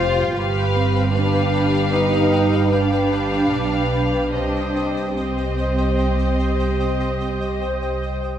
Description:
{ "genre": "cinematic, suspense film score", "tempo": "72-77 BPM", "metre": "5/4", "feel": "straight", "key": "C harmonic minor", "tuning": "A4 = 440 Hz", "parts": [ { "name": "dark studio violin section", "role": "melody", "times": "0.0-8.2 s", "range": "Eb5 to F5", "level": "-29 LUFS", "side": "left 2 dB", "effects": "none" }, { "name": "dark studio violin section", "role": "second line", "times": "0.0-8.2 s", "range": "B4 to C5", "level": "-26 LUFS", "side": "left 4 dB", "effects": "none" }, { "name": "warm studio viola section", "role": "accompaniment", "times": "0.0-8.2 s", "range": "G4", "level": "-28 LUFS", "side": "right 1 dB", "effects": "none" }, { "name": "pulsing gated texture", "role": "sustained chords", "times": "0.0-8.4 s", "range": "B4 to Eb6", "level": "-27 LUFS", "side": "right 1 dB", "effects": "chorus, built-in reverb" }, { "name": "dark chamber double bass section", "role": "bass", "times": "0.0-8.2 s", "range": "F1 to C2", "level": "-22 LUFS", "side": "right 2 dB", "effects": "none" }, { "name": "warm studio cello section", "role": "bass", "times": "0.0-7.6 s", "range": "C4 to F4", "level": "-23 LUFS", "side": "right 1 dB", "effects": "none" }, { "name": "dark concert grand piano", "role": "texture", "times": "0.0-4.4 s", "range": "D6 to C7", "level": "-39 LUFS", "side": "left 4 dB", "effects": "none" } ], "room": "moderate scoring stage reverb, RT60 1.8 s", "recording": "none", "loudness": "-17 LUFS", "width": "side -10 dB against mid", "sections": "0.0-8.4 A section", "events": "none", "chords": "0.4 G7; 4.3 Cm", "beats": "| 0.36 1.14 1.93 2.72 3.52 | 4.35 5.17 5.98 6.79 7.61" }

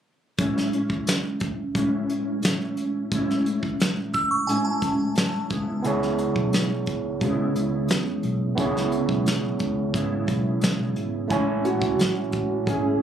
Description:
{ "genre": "indie pop, bedroom pop", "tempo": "88 BPM", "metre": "4/4", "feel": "straight", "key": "A major", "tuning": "A4 = 444 Hz", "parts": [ { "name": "mellow electric guitar", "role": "accompaniment", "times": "0.4-13.0 s", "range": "A2 to E4", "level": "-26 LUFS", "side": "equal", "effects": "ensemble chorus, warbly pitch drift" }, { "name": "soft brush drum kit", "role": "drums", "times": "0.4-12.8 s", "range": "hi-hat, kick drum, snare drum", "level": "-26 LUFS", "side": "equal", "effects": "none" }, { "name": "glassy synth bell", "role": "second line", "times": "4.1-5.5 s", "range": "G#5 to E6", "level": "-26 LUFS", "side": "right 2 dB", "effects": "lush chorus, digital delay" }, { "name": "overdriven tine electric piano", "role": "accompaniment", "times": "5.8-13.0 s", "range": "A3 to G#5", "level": "-27 LUFS", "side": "right 5 dB", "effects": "none" }, { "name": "vintage muted fingered electric bass", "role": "bass", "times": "5.9-12.9 s", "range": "G#1 to C#3", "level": "-29 LUFS", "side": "equal", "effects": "none" }, { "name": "soft electric-piano-like synth keys", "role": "melody", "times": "11.6-13.0 s", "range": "F#4 to G#4", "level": "-26 LUFS", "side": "right 2 dB", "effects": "phaser, ensemble chorus" } ], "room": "light reverb", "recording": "recorded on a phone in the room, club reverb, compression", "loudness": "-22 LUFS", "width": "side -9 dB against mid", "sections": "0.4-11.3 A section; 11.3-13.0 B section", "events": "none", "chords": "0.4 Amaj7; 5.5 C#m7; 11.3 Amaj7", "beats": "| 0.39 1.07 1.75 2.44 | 3.12 3.80 4.48 5.17 | 5.85 6.53 7.21 7.89 | 8.58 9.26 9.94 10.62 | 11.31 11.99 12.67" }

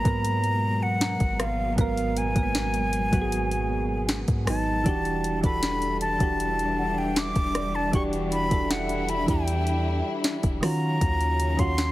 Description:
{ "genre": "contemporary R&B", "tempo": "78 BPM", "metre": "4/4", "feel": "straight", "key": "unclear", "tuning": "A4 = 439 Hz", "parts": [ { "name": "breathy concert flute", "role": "melody", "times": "0.0-11.9 s", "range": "E#5 to D6", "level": "-28 LUFS", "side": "equal", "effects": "none" }, { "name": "soft electric-piano-like synth keys", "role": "accompaniment", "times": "0.0-11.9 s", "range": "G#2 to C#5", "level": "-29 LUFS", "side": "right 2 dB", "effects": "chorus" }, { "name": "warm studio string section", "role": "sustained chords", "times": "0.0-11.9 s", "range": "B2 to E4", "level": "-33 LUFS", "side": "left 2 dB", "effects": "none" }, { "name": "celesta", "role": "texture", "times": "0.0-11.0 s", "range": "D5 to A#5", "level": "-40 LUFS", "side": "equal", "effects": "digital delay" }, { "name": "soft 808-style bass", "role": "bass", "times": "0.1-11.9 s", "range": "E1 to D#3", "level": "-29 LUFS", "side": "equal", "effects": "none" }, { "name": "smooth R&B drum kit", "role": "drums", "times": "0.1-11.9 s", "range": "hi-hat, kick drum, rim click, snare drum", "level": "-26 LUFS", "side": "equal", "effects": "overdrive" } ], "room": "light reverb", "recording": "heavily compressed radio sound, multiband compression", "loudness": "-23 LUFS", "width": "side -16 dB against mid", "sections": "0.0-11.9 A section", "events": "none", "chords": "0.0 G#m9; 4.9 Em9; 10.6 D#m9", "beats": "0.24 1.01 | 1.78 2.55 3.32 4.09 | 4.86 5.63 6.40 7.17 | 7.93 8.70 9.47 10.24 | 11.01 11.78" }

